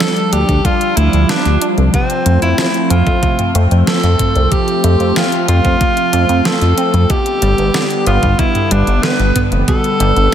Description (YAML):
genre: synthwave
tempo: 93 BPM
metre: 4/4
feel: straight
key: unclear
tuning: A4 = 442 Hz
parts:
  - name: clear tenor saxophone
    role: melody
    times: 0.0-10.3 s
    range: C4 to B4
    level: -16 LUFS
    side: equal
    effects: ping-pong delay
  - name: phased analog pad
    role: sustained chords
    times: 0.0-10.3 s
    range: D3 to D4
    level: -18 LUFS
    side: right 1 dB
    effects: phaser, chorus, sidechain pumping
  - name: analog pluck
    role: arpeggios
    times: 0.0-10.3 s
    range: B2 to D4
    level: -23 LUFS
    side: right 2 dB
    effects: chorus, ping-pong delay
  - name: pop drum kit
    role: drums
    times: 0.0-10.3 s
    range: hi-hat, snare drum, toms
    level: -20 LUFS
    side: equal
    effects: overdrive
  - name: chorused synth bass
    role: bass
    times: 0.3-10.3 s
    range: F1 to F2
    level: -13 LUFS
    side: equal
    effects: none
  - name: electronic kick drum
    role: drums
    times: 0.5-9.8 s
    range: none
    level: -16 LUFS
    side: equal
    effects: overdrive
room: moderate plate reverb, RT60 3.1 s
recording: dreamy mix soaked in reverb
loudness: -11 LUFS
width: side -9 dB against mid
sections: 0.0-10.3 A section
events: none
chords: 0.0 Dm; 1.9 F; 7.1 G